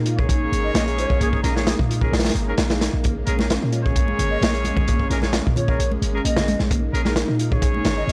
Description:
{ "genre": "breakbeat, breaks", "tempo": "131 BPM", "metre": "4/4", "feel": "straight", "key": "Bb minor", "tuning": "A4 = 438 Hz", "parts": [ { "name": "phased analog pad", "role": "sustained chords", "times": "0.0-8.1 s", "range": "Ab3 to Eb4", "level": "-31 LUFS", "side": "equal", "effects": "phaser, chorus, vintage 12-bit sampler grit, sidechain pumping" }, { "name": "warm 808-style bass", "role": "bass", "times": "0.0-8.1 s", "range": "Ab1 to Bb2", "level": "-26 LUFS", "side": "equal", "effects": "none" }, { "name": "mellow electric guitar", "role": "riff", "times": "0.1-8.1 s", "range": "Ab3 to Ab4", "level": "-34 LUFS", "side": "equal", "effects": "subtle chorus, tape echo" }, { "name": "crunchy breakbeat drum kit", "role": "drums", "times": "0.1-8.1 s", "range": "hi-hat, kick drum, snare drum", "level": "-24 LUFS", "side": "equal", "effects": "none" }, { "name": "warm horn section", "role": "stabs", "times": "0.2-8.1 s", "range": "Db4 to Db5", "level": "-30 LUFS", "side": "equal", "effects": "vintage 12-bit sampler grit, tape echo" }, { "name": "mellow baroque flute", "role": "melody", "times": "0.6-8.1 s", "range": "Ab4 to Eb5", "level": "-31 LUFS", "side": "equal", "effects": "telephone sound, tape echo" }, { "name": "congas", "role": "percussion", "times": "3.4-7.9 s", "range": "none", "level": "-32 LUFS", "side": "equal", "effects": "none" } ], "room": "light reverb", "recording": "dry, gritty hardware recording, cassette tape", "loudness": "-21 LUFS", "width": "mono", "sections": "0.0-8.1 A section", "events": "none", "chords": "0.0 Bbm7" }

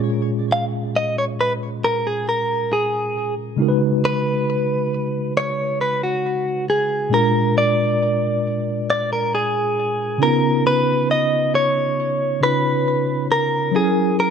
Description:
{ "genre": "R&B", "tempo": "68 BPM", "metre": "4/4", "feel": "straight", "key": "unclear", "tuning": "A4 = 440 Hz", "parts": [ { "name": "mellow tine electric piano", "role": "accompaniment", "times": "0.0-14.3 s", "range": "Bb2 to Db5", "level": "-21 LUFS", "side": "equal", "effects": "medium stereo tremolo" }, { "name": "direct-recorded clean electric guitar", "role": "melody", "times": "0.5-14.3 s", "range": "Gb4 to F5", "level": "-19 LUFS", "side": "equal", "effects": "ping-pong delay" } ], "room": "light reverb, digital ambience", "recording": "dark, warm production", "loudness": "-17 LUFS", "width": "side -7 dB against mid", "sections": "0.0-7.1 A section; 7.1-14.3 B section", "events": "none", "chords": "0.0 Bbm7; 3.6 Db7sus4; 7.1 Bb7; 10.2 Db7; 13.7 Gb7" }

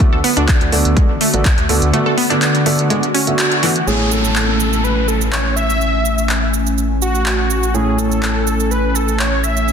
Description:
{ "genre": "progressive house", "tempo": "124 BPM", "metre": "4/4", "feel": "straight", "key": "A major", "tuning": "A4 = 440 Hz", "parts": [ { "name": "airy breathy pad", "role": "sustained chords", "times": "0.0-9.7 s", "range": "D3 to G#5", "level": "-22 LUFS", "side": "left 2 dB", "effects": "chorus, sidechain pumping" }, { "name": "wide unison pluck", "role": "arpeggios", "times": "0.0-3.7 s", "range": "E3 to A4", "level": "-19 LUFS", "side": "equal", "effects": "sidechain pumping, ping-pong delay" }, { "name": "felt-muted upright piano", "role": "stabs", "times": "0.0-9.7 s", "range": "A2 to G#5", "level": "-21 LUFS", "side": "right 2 dB", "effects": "sidechain pumping, ping-pong delay" }, { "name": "deep house drum kit", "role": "drums", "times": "0.0-9.7 s", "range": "handclaps, hi-hat, shaker", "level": "-20 LUFS", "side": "right 1 dB", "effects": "none" }, { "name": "electronic kick drum", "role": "drums", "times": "0.0-1.6 s", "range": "none", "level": "-13 LUFS", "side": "equal", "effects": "none" }, { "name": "round analog bass", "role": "bass", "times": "0.1-9.7 s", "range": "A1 to D2", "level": "-19 LUFS", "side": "equal", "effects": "sidechain pumping" }, { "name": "wide unison lead", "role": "melody", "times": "3.1-9.7 s", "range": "F#4 to E5", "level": "-20 LUFS", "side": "equal", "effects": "ping-pong delay" }, { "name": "downlifter", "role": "sound effects", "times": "3.9-7.7 s", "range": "none", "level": "-23 LUFS", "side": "left 1 dB", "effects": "none" } ], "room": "moderate lush hall reverb, RT60 1.6 s", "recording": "dense, heavily limited modern master", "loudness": "-13 LUFS", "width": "side -7 dB against mid", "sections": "0.0-3.9 A section; 3.9-9.7 B section", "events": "kick drops out 1.9-3.9; band accent 3.4; filter sweep on analog synth pad 3.9-9.7", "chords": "0.0 D6; 3.9 Amaj7" }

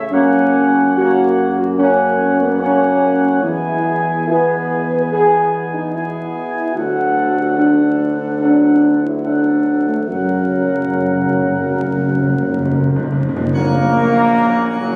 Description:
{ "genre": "classical", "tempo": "72 BPM", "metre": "4/4", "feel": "straight", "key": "F# mixolydian", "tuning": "A4 = 440 Hz", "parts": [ { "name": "mellow trumpet section", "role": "melody", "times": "0.0-15.0 s", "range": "F#4 to G#5", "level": "-25 LUFS", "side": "equal", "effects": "none" }, { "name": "clear trombone section", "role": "sustained chords", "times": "0.0-15.0 s", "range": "B2 to B3", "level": "-25 LUFS", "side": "equal", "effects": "none" }, { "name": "dark French horn section", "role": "sustained chords", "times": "0.1-15.0 s", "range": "F#3 to B4", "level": "-19 LUFS", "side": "equal", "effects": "none" }, { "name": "warm tuba", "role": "bass", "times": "0.1-15.0 s", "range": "F#1 to F#2", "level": "-22 LUFS", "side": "equal", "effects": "none" }, { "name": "timpani", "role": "percussion", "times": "10.1-14.8 s", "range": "F#2", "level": "-22 LUFS", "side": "equal", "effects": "none" }, { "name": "pipe organ, plenum", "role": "sustained chords", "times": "13.5-15.0 s", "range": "C#3 to C#5", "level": "-28 LUFS", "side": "equal", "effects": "none" } ], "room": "moderate scoring stage reverb, RT60 1.8 s", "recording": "recorded on a phone in the room, studio reverb, vinyl crackle", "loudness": "-16 LUFS", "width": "mono", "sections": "0.0-13.5 A section; 13.5-15.0 B section", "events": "timpani fill 10.1-13.5", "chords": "0.1 F#; 3.4 E; 6.8 D; 10.1 F#" }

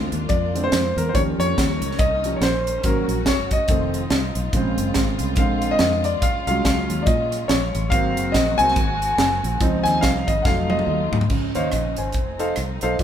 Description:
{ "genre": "uptempo gospel", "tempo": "142 BPM", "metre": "4/4", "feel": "swing 59% on 8ths", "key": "Db major", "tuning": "A4 = 440 Hz", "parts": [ { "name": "clear concert grand piano", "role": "accompaniment", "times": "0.0-13.0 s", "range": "Bb2 to Ab5", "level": "-22 LUFS", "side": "equal", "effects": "none" }, { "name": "dark studio string section", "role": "sustained chords", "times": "0.0-13.0 s", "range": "Db3 to Gb4", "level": "-31 LUFS", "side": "equal", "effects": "none" }, { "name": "fingered electric bass", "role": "bass", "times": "0.0-13.0 s", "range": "F1 to Bb2", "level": "-26 LUFS", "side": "equal", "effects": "none" }, { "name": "crisp fusion drum kit", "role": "drums", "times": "0.1-13.0 s", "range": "crash cymbal, hi-hat, kick drum, rim click, snare drum, toms", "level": "-22 LUFS", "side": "equal", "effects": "none" } ], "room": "moderate large studio reverb, RT60 1.3 s", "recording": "band playing live in one room", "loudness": "-18 LUFS", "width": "side -9 dB against mid", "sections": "0.0-11.3 A section; 11.3-13.0 B section", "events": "grand piano solo 0.0-11.3; drum fill 10.5-11.3", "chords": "0.0 Bb7; 1.1 Eb7; 2.8 Ab9sus4; 3.7 F7; 4.5 Bbm7; 5.4 Bb7; 6.2 Ebm11/Bb; 7.9 Ab9; 9.6 Dbmaj9; 10.5 F7b9; 11.3 Dbmaj9; 12.1 F7" }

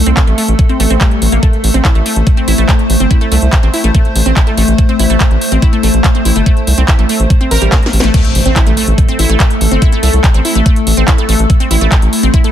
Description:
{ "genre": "psychedelic trance", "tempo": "143 BPM", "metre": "4/4", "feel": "straight", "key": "A minor", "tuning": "A4 = 440 Hz", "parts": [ { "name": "evolving wavetable pad", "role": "sustained chords", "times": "0.0-12.5 s", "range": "A3 to C5", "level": "-16 LUFS", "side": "left 2 dB", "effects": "chorus, built-in reverb, sidechain pumping" }, { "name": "wide unison pluck", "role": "riff", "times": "0.1-12.5 s", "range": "G3 to Bb4", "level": "-17 LUFS", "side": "moving between left 3 dB and right 4 dB", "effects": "auto-pan, cassette tape, sidechain pumping, ping-pong delay" }, { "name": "round analog bass", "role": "bass", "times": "0.1-12.3 s", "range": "G1 to C2", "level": "-11 LUFS", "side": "equal", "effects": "none" }, { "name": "drum and bass drum kit", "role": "drums", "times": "0.1-12.5 s", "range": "crash cymbal, handclaps, hi-hat, snare drum", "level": "-17 LUFS", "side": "equal", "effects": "none" }, { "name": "electronic kick drum", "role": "drums", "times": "0.2-12.4 s", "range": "none", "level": "-10 LUFS", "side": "equal", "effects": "none" }, { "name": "impact", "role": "sound effects", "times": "8.1-9.8 s", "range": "none", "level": "-20 LUFS", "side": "equal", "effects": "none" } ], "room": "little or no reverb", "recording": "dense, heavily limited modern master", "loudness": "-8 LUFS", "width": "side -10 dB against mid", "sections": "0.0-8.1 A section; 8.1-12.5 B section", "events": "drum fill 7.7-8.1; drop 8.1-12.5; impact 8.1-9.8", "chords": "0.0 A5" }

